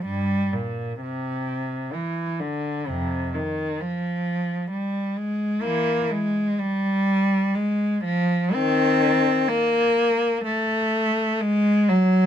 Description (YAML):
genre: classical, baroque-style suite movement for unaccompanied cello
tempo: 63 BPM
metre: 3/4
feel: uneven beats, rubato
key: F minor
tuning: A4 = 440 Hz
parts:
  - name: warm cello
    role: solo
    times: 0.0-12.3 s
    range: F2 to C4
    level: -21 LUFS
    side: equal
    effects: none
room: light reverb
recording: close, detailed microphones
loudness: -21 LUFS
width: side -9 dB against mid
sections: 0.0-12.3 A section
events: none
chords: none